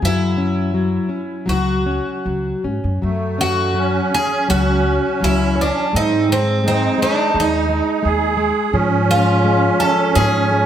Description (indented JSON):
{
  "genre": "fado-style ballad",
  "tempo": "74-88 BPM",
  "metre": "4/4",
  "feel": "rubato",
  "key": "F# minor",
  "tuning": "A4 = 443 Hz",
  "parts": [
    { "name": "picked twelve-string acoustic guitar", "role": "melody", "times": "0.0-10.7 s", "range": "B#3 to A4", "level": "-19 LUFS", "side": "equal", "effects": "none" },
    { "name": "nylon-string guitar", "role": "accompaniment", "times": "0.0-10.7 s", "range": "E#3 to C#5", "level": "-22 LUFS", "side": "left 3 dB", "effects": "none" },
    { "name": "upright bass", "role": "bass", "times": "0.0-10.6 s", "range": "C#2 to G#2", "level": "-21 LUFS", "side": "equal", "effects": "none" },
    { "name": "musette accordion", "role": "second line", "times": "3.0-10.7 s", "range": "A3 to G#4", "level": "-20 LUFS", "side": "right 5 dB", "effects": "none" }
  ],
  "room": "wet scoring stage reverb, RT60 1.8 s",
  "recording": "none",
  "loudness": "-15 LUFS",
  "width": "side -10 dB against mid",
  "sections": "0.0-3.0 A section; 3.0-10.7 A section",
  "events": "none",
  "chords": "0.0 F#5; 3.0 F#m; 5.9 G#; 8.7 C#/G#"
}